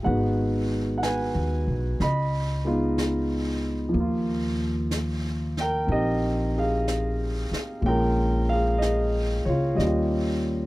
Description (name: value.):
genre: jazz ballad.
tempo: 62 BPM.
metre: 4/4.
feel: swing 68% on 8ths.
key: unclear.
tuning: A4 = 437 Hz.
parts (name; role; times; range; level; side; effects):
warm grand piano; accompaniment; 0.0-10.7 s; F3 to Cb6; -25 LUFS; equal; none.
upright bass; bass; 0.1-10.7 s; Ab1 to Eb2; -27 LUFS; equal; none.
jazz brush drum kit; drums; 0.1-10.7 s; brushed snare drum, hi-hat, snare drum; -38 LUFS; equal; none.
room: little or no reverb.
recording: dry, close 1970s-style studio recording.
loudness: -23 LUFS.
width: side -18 dB against mid.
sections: 0.0-10.7 A section.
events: none.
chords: 0.1 Abm7; 2.0 Db9; 3.9 Ebadd9; 7.8 Bbm7; 9.8 Eb9.